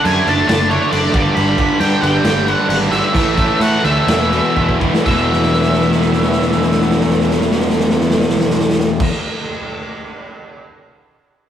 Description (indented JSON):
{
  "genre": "quiet-loud alternative rock",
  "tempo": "118-138 BPM",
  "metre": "4/4",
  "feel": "straight",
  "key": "unclear",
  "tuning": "A4 = 440 Hz",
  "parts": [
    { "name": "octave-fuzz lead guitar", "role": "melody", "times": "0.0-9.1 s", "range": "C#5 to B5", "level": "-20 LUFS", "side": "equal", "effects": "distortion" },
    { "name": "rich studio string section", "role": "sustained chords", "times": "0.0-9.1 s", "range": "E3 to B5", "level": "-29 LUFS", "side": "right 2 dB", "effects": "none" },
    { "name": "distorted electric guitar", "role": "riff", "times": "0.0-9.1 s", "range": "E2 to D4", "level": "-20 LUFS", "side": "left 4 dB", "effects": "overdrive" },
    { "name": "distorted electric guitar", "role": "riff", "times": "0.0-9.1 s", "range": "E2 to D4", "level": "-21 LUFS", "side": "right 6 dB", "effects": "overdrive" },
    { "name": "distorted electric guitar", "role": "riff", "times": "0.0-9.1 s", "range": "E2 to D4", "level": "-22 LUFS", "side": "right 1 dB", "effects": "overdrive" },
    { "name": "fuzz picked electric bass", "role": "bass", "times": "0.0-9.1 s", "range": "E1 to A2", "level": "-21 LUFS", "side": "equal", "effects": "overdrive" },
    { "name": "raw garage drum kit", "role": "drums", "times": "0.1-10.6 s", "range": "crash cymbal, kick drum, snare drum", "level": "-18 LUFS", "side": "equal", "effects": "none" }
  ],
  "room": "moderate studio reverb, RT60 0.6 s",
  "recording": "rough rehearsal-room recording, tube saturation",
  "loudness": "-12 LUFS",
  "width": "side -10 dB against mid",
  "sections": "0.0-5.1 A section; 5.1-9.1 B section",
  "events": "slowing down 1.4-5.1; drum fill 4.6-5.1, 5.3-9.0",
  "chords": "0.0 D/F#; 1.1 G; 3.1 A; 4.1 Esus4; 5.1 E"
}